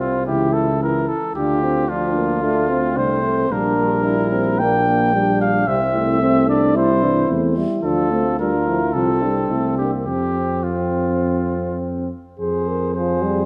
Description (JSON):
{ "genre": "classical, brass quintet", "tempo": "110 BPM", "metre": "4/4", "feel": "rubato", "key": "F major", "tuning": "A4 = 441 Hz", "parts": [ { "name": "warm trumpet", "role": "melody", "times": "0.0-13.5 s", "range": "F4 to G5", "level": "-24 LUFS", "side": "equal", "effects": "none" }, { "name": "mellow flugelhorn", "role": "second line", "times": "0.0-13.5 s", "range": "C4 to Ab4", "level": "-27 LUFS", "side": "equal", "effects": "none" }, { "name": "clear euphonium", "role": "accompaniment", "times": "0.0-13.5 s", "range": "F3 to F4", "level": "-26 LUFS", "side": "equal", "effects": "none" }, { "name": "mellow French horn", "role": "accompaniment", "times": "0.0-13.5 s", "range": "D3 to Bb4", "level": "-28 LUFS", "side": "equal", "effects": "none" }, { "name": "warm tuba", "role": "bass", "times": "0.0-13.5 s", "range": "Bb1 to F2", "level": "-26 LUFS", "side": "equal", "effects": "none" } ], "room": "moderate scoring stage reverb, RT60 1.9 s", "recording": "none", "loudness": "-19 LUFS", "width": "mono", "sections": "0.0-12.4 A section; 12.4-13.5 B section", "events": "none", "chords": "0.3 C#dim7; 1.4 Dm; 3.5 Gm/Bb; 5.7 C; 7.8 Dm; 8.9 F/C; 9.5 C; 10.1 F5; 12.4 Fm" }